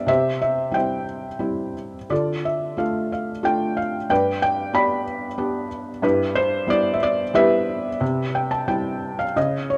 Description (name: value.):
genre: classical, lyrical solo piano.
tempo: 91 BPM.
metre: 3/4.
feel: uneven beats, rubato.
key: unclear.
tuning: A4 = 439 Hz.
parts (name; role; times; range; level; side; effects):
felt-muted upright piano; solo; 0.0-9.8 s; G2 to B5; -22 LUFS; equal; none.
room: light reverb.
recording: none.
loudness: -23 LUFS.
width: mono.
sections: 0.0-9.8 A section.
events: felt piano fill 8.0-9.8.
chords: 0.1 C; 2.1 Dm; 4.1 G; 6.0 Em/G; 8.0 C.